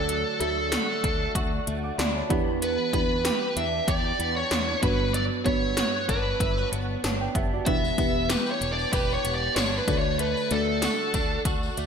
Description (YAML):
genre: 1980s-style pop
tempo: 95 BPM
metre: 4/4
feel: swing 55% on 16ths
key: E dorian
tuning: A4 = 439 Hz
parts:
  - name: smooth overdriven lead guitar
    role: melody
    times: 0.0-11.4 s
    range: A4 to E5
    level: -27 LUFS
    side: right 1 dB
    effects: ping-pong delay
  - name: mellow FM electric piano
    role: accompaniment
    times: 0.0-11.9 s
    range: G2 to D6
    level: -30 LUFS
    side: equal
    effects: chorus, phaser
  - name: direct-recorded clean electric guitar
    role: riff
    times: 0.0-11.9 s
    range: F#3 to G4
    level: -34 LUFS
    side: right 3 dB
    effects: ensemble chorus
  - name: fretless electric bass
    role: bass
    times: 0.0-11.9 s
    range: E1 to E2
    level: -32 LUFS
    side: left 1 dB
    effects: ensemble chorus
  - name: 80s electronic pad drums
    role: drums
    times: 0.1-11.9 s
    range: hi-hat, kick drum, snare drum, tambourine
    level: -28 LUFS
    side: left 1 dB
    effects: overdrive
  - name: tambourine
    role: percussion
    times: 7.8-11.9 s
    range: none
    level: -40 LUFS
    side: left 8 dB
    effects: none
room: moderate lush hall reverb, RT60 1.6 s, digital ambience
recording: bright 1980s-style digital production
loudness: -23 LUFS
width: side -6 dB against mid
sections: 0.0-11.9 A section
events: FM electric piano fill 11.5-11.9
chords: 0.0 D; 2.3 Em7; 4.8 Gmaj7; 7.7 Em7; 9.9 D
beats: | 0.09 0.72 1.35 1.98 | 2.61 3.25 3.88 4.51 | 5.14 5.77 6.40 7.04 | 7.67 8.30 8.93 9.56 | 10.19 10.82 11.46